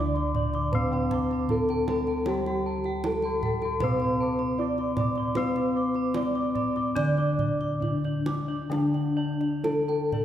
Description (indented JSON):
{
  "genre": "Javanese gamelan",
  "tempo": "61-78 BPM",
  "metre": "4/4",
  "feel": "straight",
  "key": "unclear",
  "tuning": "A4 = 440 Hz",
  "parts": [
    { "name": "gamelan-type bronze metallophone", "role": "melody", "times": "0.0-10.2 s", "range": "D4 to D5", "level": "-29 LUFS", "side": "equal", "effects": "none" },
    { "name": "gamelan-type bronze metallophone", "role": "accompaniment", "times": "0.0-10.2 s", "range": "D3 to D4", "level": "-30 LUFS", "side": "left 3 dB", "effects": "none" },
    { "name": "gamelan-type bossed gongs", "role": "arpeggios", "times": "0.0-10.2 s", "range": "D5 to D6", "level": "-37 LUFS", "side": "left 3 dB", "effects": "none" },
    { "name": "gamelan-type bronze metallophone", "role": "arpeggios", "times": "0.0-10.2 s", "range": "D5 to D6", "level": "-36 LUFS", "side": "right 3 dB", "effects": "none" },
    { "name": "gamelan-type bossed gongs", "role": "bass", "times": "0.0-10.2 s", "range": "D2 to C5-45c", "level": "-30 LUFS", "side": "right 1 dB", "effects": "none" },
    { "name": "kendang", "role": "percussion", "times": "0.2-10.2 s", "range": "none", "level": "-34 LUFS", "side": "right 2 dB", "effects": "none" }
  ],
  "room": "wet concert hall reverb, RT60 2.2 s",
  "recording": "heard from further back in the room",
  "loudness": "-24 LUFS",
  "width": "side -10 dB against mid",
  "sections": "0.0-10.2 A section",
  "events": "none",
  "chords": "none"
}